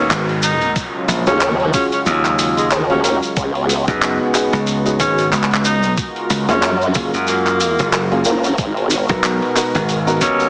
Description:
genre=glitch hop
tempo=92 BPM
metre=4/4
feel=swing 57% on 16ths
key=G# dorian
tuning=A4 = 440 Hz
part: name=clear tenor saxophone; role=melody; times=0.0-10.5 s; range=G#3 to D#4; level=-20 LUFS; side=equal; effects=digital delay
part: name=warm analog pad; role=sustained chords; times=0.0-10.5 s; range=B2 to A#4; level=-24 LUFS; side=equal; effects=chorus, sidechain pumping
part: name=slap bass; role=bass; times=0.0-10.5 s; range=F#1 to F#2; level=-18 LUFS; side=equal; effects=none
part: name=downlifter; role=sound effects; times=0.0-3.4 s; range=none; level=-31 LUFS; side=equal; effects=none
part: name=boom bap sampler-style drum kit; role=drums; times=0.1-10.5 s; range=handclaps, hi-hat, snare drum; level=-22 LUFS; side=equal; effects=none
part: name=shekere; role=percussion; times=0.1-10.5 s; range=none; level=-25 LUFS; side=equal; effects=none
part: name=electronic kick drum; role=drums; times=0.8-10.4 s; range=none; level=-22 LUFS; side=equal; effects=none
part: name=warm concert grand piano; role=stabs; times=1.3-10.4 s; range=A#3 to A#4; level=-20 LUFS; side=equal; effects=sidechain pumping, digital delay
part: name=formant-sweep wobble bass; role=bass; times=1.3-9.1 s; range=F#1 to F#2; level=-17 LUFS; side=equal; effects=chorus, overdrive
room=moderate lush hall reverb, RT60 2.0 s, digital ambience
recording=heavily compressed radio sound, multiband compression, small speaker sound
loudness=-14 LUFS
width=side -32 dB against mid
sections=0.0-10.5 A section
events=none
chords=0.0 G#m9; 0.8 D#m11; 3.4 C#7sus4; 6.0 F#maj9; 8.6 G#m9

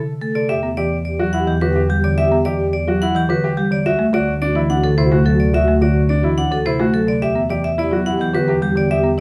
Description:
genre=classical, minimalist pattern music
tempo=107 BPM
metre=3/4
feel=straight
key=E minor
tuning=A4 = 440 Hz
part: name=folk marimba with medium hard mallets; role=accompaniment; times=0.0-9.2 s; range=C3 to B3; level=-22 LUFS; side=equal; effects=none
part: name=clear baby grand piano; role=arpeggios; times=0.0-9.1 s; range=D4 to A4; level=-26 LUFS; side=equal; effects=none
part: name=vibraphone with hard mallets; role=melody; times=0.2-9.1 s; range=G4 to F#5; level=-24 LUFS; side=equal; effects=none
part: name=mellow wooden-headed alto flute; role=second line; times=0.5-9.2 s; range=F#4 to G4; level=-27 LUFS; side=equal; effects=none
part: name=dark symphonic double bass section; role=bass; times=0.5-9.2 s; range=D2 to E2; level=-24 LUFS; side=equal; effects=none
room=moderate large studio reverb, RT60 0.9 s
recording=none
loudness=-17 LUFS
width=mono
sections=0.5-9.2 A section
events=none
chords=0.5 Em7; 3.9 D7; 7.2 Em7

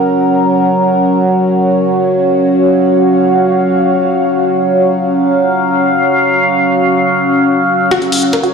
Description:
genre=psychedelic trance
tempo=free time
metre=none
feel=none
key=F# major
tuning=A4 = 441 Hz
part: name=overtone-sweeping drone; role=sustained chords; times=0.0-8.5 s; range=F#3 to E#5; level=-12 LUFS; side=equal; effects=chorus, built-in reverb, sidechain pumping
part: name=deep dark ambient pad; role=texture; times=0.0-8.5 s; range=C#4 to F#5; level=-13 LUFS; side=equal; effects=chorus, built-in reverb, sidechain pumping
part: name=wide unison pluck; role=riff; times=7.9-8.5 s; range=F#4 to A#4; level=-15 LUFS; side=left 1 dB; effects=auto-pan, sidechain pumping, dub echo
part: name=electronic hi-hat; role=drums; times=7.9-8.5 s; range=none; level=-19 LUFS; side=left 3 dB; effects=none
part: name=electronic kick drum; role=drums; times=7.9-8.4 s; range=none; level=-21 LUFS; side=equal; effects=high-pass filter on kick, high-pass filter on room
room=wet digital room reverb, RT60 1.2 s, digital ambience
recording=played on a big sound system in a bare room, stone room reverb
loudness=-9 LUFS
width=side -5 dB against mid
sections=0.0-7.9 A section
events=filter sweep on synth drone 0.0-7.9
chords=0.0 F#5

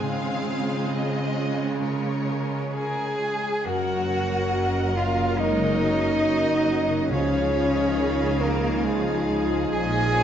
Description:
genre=cinematic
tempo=64-70 BPM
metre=4/4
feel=rubato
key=Db major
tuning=A4 = 442 Hz
part: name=warm studio violin section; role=melody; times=0.0-10.2 s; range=Bb4 to F5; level=-36 LUFS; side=left 4 dB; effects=none
part: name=rich studio violin section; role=second line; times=0.0-10.2 s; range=F4 to Ab5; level=-32 LUFS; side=left 2 dB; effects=none
part: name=warm studio viola section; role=accompaniment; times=0.0-10.2 s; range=Eb3 to Bb4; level=-29 LUFS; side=right 4 dB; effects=none
part: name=concert harp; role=arpeggios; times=0.0-10.2 s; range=Gb2 to Eb5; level=-34 LUFS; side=left 7 dB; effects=none
part: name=rich studio cello section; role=bass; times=0.0-10.2 s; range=Gb2 to Db3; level=-30 LUFS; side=right 2 dB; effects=none
part: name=rich cello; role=melody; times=2.7-10.2 s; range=Ab3 to Ab4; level=-29 LUFS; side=right 1 dB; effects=none
part: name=mellow clarinet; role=second line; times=2.7-10.2 s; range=Ab3 to Ab4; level=-29 LUFS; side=left 1 dB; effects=none
part: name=mellow hollow silver concert flute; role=second line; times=2.7-10.2 s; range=Ab4 to Ab5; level=-30 LUFS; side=left 1 dB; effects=none
part: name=dark French horn section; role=sustained chords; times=3.7-10.2 s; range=F3 to Eb4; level=-30 LUFS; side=left 2 dB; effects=none
part: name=rich studio double bass section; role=bass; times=3.7-10.2 s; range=Gb1 to Db2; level=-31 LUFS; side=right 2 dB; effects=none
part: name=timpani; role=percussion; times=7.1-8.4 s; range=Db3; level=-33 LUFS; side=right 1 dB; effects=none
room=wet scoring stage reverb, RT60 1.9 s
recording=nothing above 7.9 kHz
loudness=-22 LUFS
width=side -9 dB against mid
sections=0.0-3.7 A section; 3.7-10.2 B section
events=none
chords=0.0 Dbmaj7; 1.8 Db6; 3.7 Gb; 7.1 Dbadd9

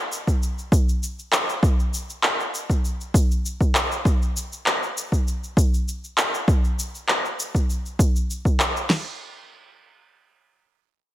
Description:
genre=organic downtempo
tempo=99 BPM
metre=4/4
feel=straight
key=none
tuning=none
part: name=electronic shaker and handclaps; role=drums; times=0.1-8.9 s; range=none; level=-24 LUFS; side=equal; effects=none
part: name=deep house drum kit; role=drums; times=0.3-9.0 s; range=crash cymbal, kick drum, snare drum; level=-20 LUFS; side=equal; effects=overdrive
room=little or no reverb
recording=none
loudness=-20 LUFS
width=side -14 dB against mid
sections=0.0-8.9 A section; 8.9-11.1 B section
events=none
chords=none

